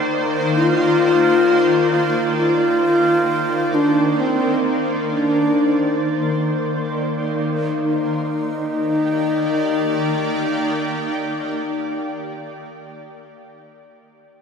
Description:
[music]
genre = ambient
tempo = 66 BPM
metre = 4/4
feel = straight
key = Eb major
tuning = A4 = 435 Hz
[part]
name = shimmering ambient pad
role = sustained chords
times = 0.0-12.2 s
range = Eb3 to D5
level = -21 LUFS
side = equal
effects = chorus, built-in reverb
[part]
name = alto flute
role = melody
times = 0.6-11.9 s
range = C4 to F4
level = -18 LUFS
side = left 2 dB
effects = ping-pong delay
[sound]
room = wet concert hall reverb, RT60 2.1 s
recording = none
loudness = -16 LUFS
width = side -6 dB against mid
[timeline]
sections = 0.0-7.8 A section; 7.8-11.5 B section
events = none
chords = 0.0 Bbadd9/Eb; 7.8 Ebmaj7

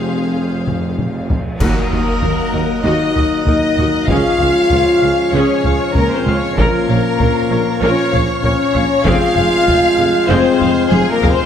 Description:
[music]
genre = cinematic, epic orchestral film score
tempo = 97 BPM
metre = 4/4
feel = straight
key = Eb dorian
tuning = A4 = 440 Hz
[part]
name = rich symphonic violin section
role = melody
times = 0.0-11.5 s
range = Ab4 to F5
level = -24 LUFS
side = left 5 dB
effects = none
[part]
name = clear symphonic violin section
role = second line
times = 0.0-11.5 s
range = Ab4 to F5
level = -21 LUFS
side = left 3 dB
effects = none
[part]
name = warm symphonic viola section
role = accompaniment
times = 0.0-11.3 s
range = Bb3 to F5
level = -23 LUFS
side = right 1 dB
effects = none
[part]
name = dark French horn section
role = sustained chords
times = 0.0-11.5 s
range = Ab3 to F4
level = -17 LUFS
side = left 2 dB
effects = none
[part]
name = dark trombone section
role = sustained chords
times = 0.0-11.5 s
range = C3 to Db4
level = -24 LUFS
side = right 1 dB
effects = none
[part]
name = mellow tuba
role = bass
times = 0.0-11.4 s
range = F1 to Eb2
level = -24 LUFS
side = right 3 dB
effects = none
[part]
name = rich symphonic cello section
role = bass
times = 0.0-11.3 s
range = Db2 to Bb2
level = -25 LUFS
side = right 2 dB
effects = none
[part]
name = rich symphonic double bass section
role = bass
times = 0.0-11.3 s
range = F1 to Eb2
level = -25 LUFS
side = right 3 dB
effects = none
[part]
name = taiko ensemble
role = drums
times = 0.7-11.5 s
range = none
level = -20 LUFS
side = equal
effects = none
[part]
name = pipe organ, plenum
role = sustained chords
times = 1.6-11.5 s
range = Ab3 to Gb5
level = -24 LUFS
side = right 1 dB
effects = none
[part]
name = clash cymbals and concert bass drum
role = percussion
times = 1.6-2.8 s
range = none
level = -25 LUFS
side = equal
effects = none
[sound]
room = wet scoring stage reverb, RT60 1.8 s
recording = none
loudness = -12 LUFS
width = side -8 dB against mid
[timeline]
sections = 0.0-1.6 A section; 1.6-11.5 B section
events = drum fill 0.7-1.6, 10.6-11.5; band accent 1.6-2.2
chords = 0.0 Fm; 1.6 Ebm; 4.1 Db; 6.6 Bbm; 9.1 Fm

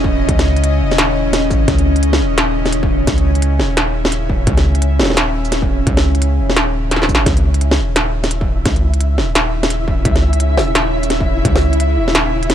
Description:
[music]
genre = half-time drum and bass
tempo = 172 BPM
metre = 4/4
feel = swing 60% on 16ths, half-time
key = C# minor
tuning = A4 = 440 Hz
[part]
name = bowed-like drone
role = sustained chords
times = 0.0-12.5 s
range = C#3 to E5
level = -20 LUFS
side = equal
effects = built-in reverb, sidechain pumping
[part]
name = long sustained 808-style bass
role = bass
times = 0.0-12.5 s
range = D#1 to C#2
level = -16 LUFS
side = equal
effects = tube saturation
[part]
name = electronic kick drum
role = drums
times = 0.0-11.5 s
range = none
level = -17 LUFS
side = equal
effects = distortion
[part]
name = industrial drum kit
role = drums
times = 0.3-12.5 s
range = hi-hat, shaker, snare drum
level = -17 LUFS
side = equal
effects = none
[part]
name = flickering grainy texture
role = texture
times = 7.5-12.5 s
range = E4 to E5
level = -24 LUFS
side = left 1 dB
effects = built-in reverb
[sound]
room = little or no reverb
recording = none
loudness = -12 LUFS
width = side -10 dB against mid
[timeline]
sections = 0.0-7.3 A section; 7.3-12.5 A section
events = drop 0.0-7.3, 7.3-12.5; drum fill 6.9-7.3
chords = 0.0 C#madd9

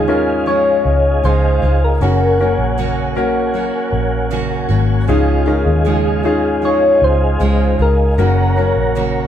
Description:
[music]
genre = pop ballad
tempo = 78 BPM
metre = 4/4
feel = straight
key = Db major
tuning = A4 = 440 Hz
[part]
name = soft struck synth lead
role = melody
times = 0.0-8.6 s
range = Ab4 to Db5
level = -17 LUFS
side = left 2 dB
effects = chorus
[part]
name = warm grand piano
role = accompaniment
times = 0.0-9.3 s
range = Ab2 to Bb4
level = -19 LUFS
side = left 3 dB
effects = none
[part]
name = mellow tonewheel organ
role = sustained chords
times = 0.0-9.3 s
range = Ab4 to Bb5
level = -22 LUFS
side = equal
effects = chorus vibrato, slow rotary speaker
[part]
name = picked steel-string acoustic guitar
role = arpeggios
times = 0.0-9.3 s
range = Gb2 to Gb4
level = -22 LUFS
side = right 4 dB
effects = none
[part]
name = vintage muted fingered electric bass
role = bass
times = 0.0-9.3 s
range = Gb1 to Eb2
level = -16 LUFS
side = equal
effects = none
[sound]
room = light reverb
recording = band playing live in one room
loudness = -12 LUFS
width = side -10 dB against mid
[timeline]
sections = 0.0-9.3 A section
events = none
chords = 0.0 Dbadd9; 2.0 Gb; 5.1 Dbadd9; 8.2 Gb

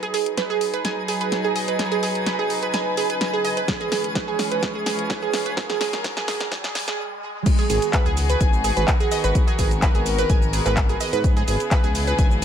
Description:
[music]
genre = progressive house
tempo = 127 BPM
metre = 4/4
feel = straight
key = G# minor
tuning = A4 = 445 Hz
[part]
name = rich chamber string section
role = sustained chords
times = 0.0-12.4 s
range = G#2 to B4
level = -27 LUFS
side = left 2 dB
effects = sidechain pumping, low-pass filter
[part]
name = analog pluck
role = arpeggios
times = 0.0-12.4 s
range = G#4 to G#5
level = -25 LUFS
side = right 6 dB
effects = chorus, sidechain pumping, digital delay
[part]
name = house drum kit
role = drums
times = 0.0-12.4 s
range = crash cymbal, handclaps, hi-hat, shaker, snare drum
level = -27 LUFS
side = left 1 dB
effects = none
[part]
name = riser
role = sound effects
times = 1.3-7.5 s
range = none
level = -35 LUFS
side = right 2 dB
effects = none
[part]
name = twinkling granular texture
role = texture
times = 0.8-7.0 s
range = G#5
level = -33 LUFS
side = right 3 dB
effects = built-in reverb, sidechain pumping
[part]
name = electronic kick drum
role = drums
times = 3.7-12.3 s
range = none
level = -20 LUFS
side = left 1 dB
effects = none
[part]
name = dark detuned saw bass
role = bass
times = 7.7-12.4 s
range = G#1 to G#2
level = -24 LUFS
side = left 1 dB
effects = sidechain pumping
[sound]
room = light reverb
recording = high-pass filter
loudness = -19 LUFS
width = side -9 dB against mid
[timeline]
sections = 0.0-7.5 A section; 7.5-12.4 B section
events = build-up 0.0-7.5; drum fill 0.0-7.0; riser 1.3-7.5; stop 7.0-7.5; drop 7.5-12.4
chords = 0.0 G#m7; 3.7 C#m7/G#; 7.5 G#m7; 11.2 C#m7/G#

